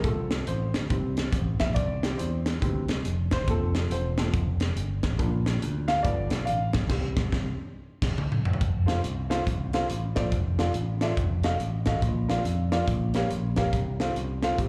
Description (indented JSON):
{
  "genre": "uptempo gospel",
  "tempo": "140 BPM",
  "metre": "4/4",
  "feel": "swing 63% on 8ths",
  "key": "F major",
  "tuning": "A4 = 439 Hz",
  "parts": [
    { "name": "warm upright piano", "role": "accompaniment", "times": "0.0-14.7 s", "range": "Bb2 to F5", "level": "-33 LUFS", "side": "equal", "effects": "slapback echo" },
    { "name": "picked electric bass", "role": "bass", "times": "0.0-14.7 s", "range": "E1 to F2", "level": "-31 LUFS", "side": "equal", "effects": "none" },
    { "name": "crisp fusion drum kit", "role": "drums", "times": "0.0-14.7 s", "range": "crash cymbal, hi-hat, kick drum, snare drum, toms", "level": "-31 LUFS", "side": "equal", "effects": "none" }
  ],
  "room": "light reverb, small room ambience",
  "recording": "live gig heard through the venue's PA, club reverb",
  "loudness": "-27 LUFS",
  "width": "mono",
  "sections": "0.0-8.6 A section; 8.6-14.7 B section",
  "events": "upright piano solo 0.0-8.6; band accent 6.9-8.6; drum fill 7.8-8.6",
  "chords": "0.0 F/C; 0.9 C; 3.5 F; 5.2 Bb; 6.0 G7; 6.9 C; 8.6 F; 10.3 Dm/F; 11.2 F7b9; 12.0 Bb; 12.9 Bbm6; 13.7 F/C",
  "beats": "| 0.05 0.48 0.91 1.34 | 1.76 2.19 2.62 3.05 | 3.48 3.91 4.34 4.77 | 5.19 5.62 6.05 6.48 | 6.90 7.33 7.76 8.19 | 8.61 9.04 9.47 9.89 | 10.32 10.75 11.18 11.60 | 12.03 12.46 12.88 13.31 | 13.74 14.16 14.59"
}